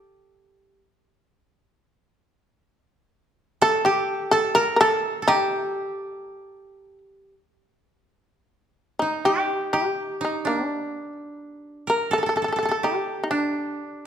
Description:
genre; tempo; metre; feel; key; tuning
japanese traditional, Japanese chamber music; 62 BPM; 2/4; rubato; G hirajoshi; A4 = 440 Hz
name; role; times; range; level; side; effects
koto; second line; 0.0-14.1 s; D4 to Bb4; -25 LUFS; right 2 dB; none
shamisen; melody; 3.6-14.1 s; D4 to Bb4; -22 LUFS; left 1 dB; none
room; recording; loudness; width
moderate scoring stage reverb, RT60 1.6 s; minimal, uncompressed stereo recording; -21 LUFS; side -9 dB against mid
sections
0.0-7.5 A section; 7.5-14.1 B section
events
none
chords
none

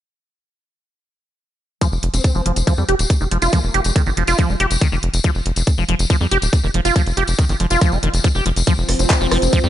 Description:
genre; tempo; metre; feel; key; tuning
psychedelic trance; 140 BPM; 4/4; straight; F minor; A4 = 437 Hz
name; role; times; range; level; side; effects
liquid acid bass; riff; 1.8-9.7 s; Eb3 to G4; -21 LUFS; moving between left 6 dB and right 4 dB; phaser, auto-pan, sidechain pumping, digital delay
electronic kick drum; drums; 1.8-9.6 s; none; -15 LUFS; equal; overdrive
garage drum kit; drums; 1.8-9.6 s; handclaps, hi-hat, rim click; -24 LUFS; right 1 dB; overdrive
tambourine; percussion; 1.8-9.7 s; none; -27 LUFS; left 4 dB; none
tight sequencer bass; bass; 1.9-9.7 s; Eb1 to F2; -19 LUFS; equal; none
vowel-sweep wobble bass; second line; 2.1-4.0, 9.0-9.4 s; Ab3 to Eb4; -30 LUFS; equal; analog chorus, sidechain pumping, high-pass filter, ping-pong delay
bubbling stepped-filter texture; sustained chords; 8.7-9.7 s; F3 to C4; -21 LUFS; equal; chorus, built-in reverb, sidechain pumping
room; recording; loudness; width
little or no reverb; nothing above 10.8 kHz; -15 LUFS; side -12 dB against mid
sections
1.8-9.7 A section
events
none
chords
1.8 F5

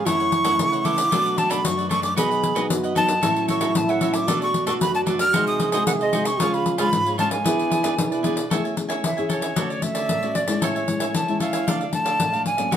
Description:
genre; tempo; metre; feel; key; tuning
samba and choro; 114 BPM; 4/4; straight; F# minor, A major from 8.5 s; A4 = 440 Hz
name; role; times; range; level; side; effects
mellow trombone; second line; 0.0-8.5 s; E4 to G#4; -25 LUFS; right 3 dB; none
cavaquinho; accompaniment; 0.0-12.8 s; D4 to G#5; -29 LUFS; right 5 dB; none
nylon-string guitar; accompaniment; 0.0-12.8 s; F#2 to G#4; -28 LUFS; left 4 dB; none
breathy bright jazz flute; melody; 0.1-12.8 s; C#5 to E#6; -23 LUFS; equal; plate reverb
pandeiro; percussion; 0.1-12.8 s; none; -26 LUFS; left 3 dB; none
room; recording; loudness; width
moderate studio reverb, RT60 0.8 s; none; -19 LUFS; side -9 dB against mid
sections
0.0-8.5 A section; 8.5-12.8 B section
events
flute solo 8.5-12.8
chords
0.1 F#m7; 1.1 Bm7; 2.2 B; 3.2 F#m7/A; 4.3 Bm7; 5.3 G#7/B#; 6.4 C#; 7.5 E7; 8.5 Amaj7; 9.6 Dmaj7; 10.6 Amaj7; 11.7 Dm

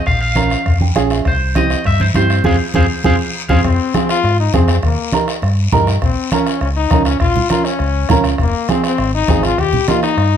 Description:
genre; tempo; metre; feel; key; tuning
latin, cumbia; 202 BPM; 4/4; straight; F harmonic minor, F minor from 3.6 s; A4 = 440 Hz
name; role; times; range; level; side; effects
electric guitar at the edge of break-up; melody; 0.0-3.6 s; Ab4 to F5; -20 LUFS; equal; spring reverb, slapback echo
fingered electric bass; bass; 0.1-10.4 s; F1 to Ab2; -17 LUFS; equal; none
bombo; percussion; 0.1-10.3 s; none; -20 LUFS; left 2 dB; none
guiro; percussion; 0.1-10.4 s; none; -28 LUFS; left 6 dB; none
warm upright piano; accompaniment; 0.4-10.1 s; Bb3 to G5; -18 LUFS; right 5 dB; none
congas; percussion; 0.4-10.3 s; none; -20 LUFS; right 2 dB; none
brilliant trombone; second line; 3.6-10.4 s; Bb3 to G4; -18 LUFS; left 7 dB; none
room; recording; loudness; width
moderate studio reverb, RT60 0.6 s; none; -12 LUFS; side -9 dB against mid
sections
0.0-3.6 A section; 3.6-10.4 B section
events
upright piano fill 0.7-1.3; drum fill 2.5-3.6; band accent 2.5-3.6; trombone solo 3.6-10.4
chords
0.1 Bbm; 1.3 C; 2.5 Fm; 4.8 Eb; 6.0 Bbm; 8.4 Fm; 9.6 Eb

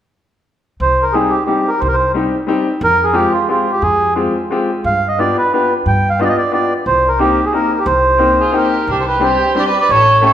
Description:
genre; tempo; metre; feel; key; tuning
musette waltz; 178 BPM; 3/4; straight; C minor; A4 = 440 Hz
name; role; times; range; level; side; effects
mellow accordion; melody; 0.8-10.3 s; F4 to G5; -13 LUFS; right 1 dB; none
upright bass; bass; 0.8-10.3 s; A1 to G2; -21 LUFS; equal; none
clear upright piano; accompaniment; 1.1-10.3 s; G3 to G4; -18 LUFS; left 3 dB; none
warm violin; second line; 8.4-10.3 s; D4 to B4; -19 LUFS; right 3 dB; none
room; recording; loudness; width
wet recital hall reverb, RT60 1.5 s; recorded in a church or concert hall; -12 LUFS; side -10 dB against mid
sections
0.8-8.9 A section; 8.9-10.3 B section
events
none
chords
0.8 Cm; 2.8 Fmadd9; 4.8 G7; 6.9 Cm7; 8.9 Csus2

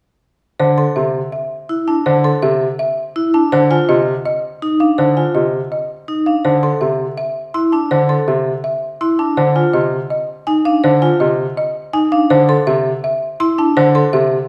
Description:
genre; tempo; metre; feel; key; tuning
classical, minimalist pattern music; 164 BPM; 4/4; straight; unclear; A4 = 439 Hz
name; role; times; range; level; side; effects
folk marimba with hard mallets; melody; 0.6-14.4 s; C5 to C6; -20 LUFS; equal; none
bright baby grand piano; accompaniment; 0.6-14.4 s; C3 to D3; -19 LUFS; equal; none
vibraphone with medium hard mallets; arpeggios; 0.8-14.2 s; D4 to A4; -19 LUFS; equal; none
room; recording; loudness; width
wet large studio reverb, RT60 1.3 s; heard from further back in the room; -16 LUFS; mono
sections
0.6-14.5 A section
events
none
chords
0.6 Am; 3.5 F7(no3); 6.4 Am; 9.4 Fm7; 12.3 Am

